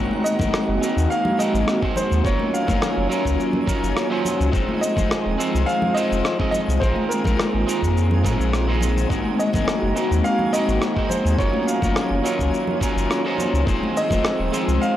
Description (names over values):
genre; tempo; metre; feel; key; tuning
sunset chillout; 105 BPM; 4/4; straight; Eb dorian; A4 = 444 Hz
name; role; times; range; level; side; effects
electric guitar at the edge of break-up; accompaniment; 0.0-15.0 s; Gb3 to Eb5; -24 LUFS; left 1 dB; auto-pan, analog delay, shimmer reverb
airy breathy pad; sustained chords; 0.0-15.0 s; Eb3 to Gb4; -26 LUFS; right 1 dB; chorus, shimmer reverb
warm sub bass; bass; 0.0-14.8 s; Eb1 to Bb2; -22 LUFS; equal; none
twinkling granular texture; texture; 0.0-15.0 s; Ab5 to Ab6; -37 LUFS; left 3 dB; built-in reverb, shimmer reverb
congas; percussion; 0.1-14.2 s; none; -30 LUFS; left 2 dB; none
bright grand piano; melody; 0.2-15.0 s; Bb4 to F5; -26 LUFS; equal; analog delay, shimmer reverb
electronic shaker and rim click; drums; 0.3-14.9 s; none; -28 LUFS; equal; none
electronic kick drum; drums; 0.4-14.2 s; none; -25 LUFS; equal; none
room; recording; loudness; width
light reverb, digital ambience; dry, gritty hardware recording, transformer saturation; -18 LUFS; side -12 dB against mid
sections
0.0-15.0 A section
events
none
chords
0.0 Ab9; 2.2 Ebm9/Gb; 4.5 Fm7; 6.8 Bb9sus4; 9.1 Ab9; 11.4 Ebm9/Gb; 13.7 Fm7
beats
0.53 1.10 1.67 | 2.25 2.82 3.39 3.96 | 4.53 5.10 5.67 6.25 | 6.82 7.39 7.96 8.53 | 9.10 9.67 10.24 10.82 | 11.39 11.96 12.53 13.10 | 13.67 14.24 14.82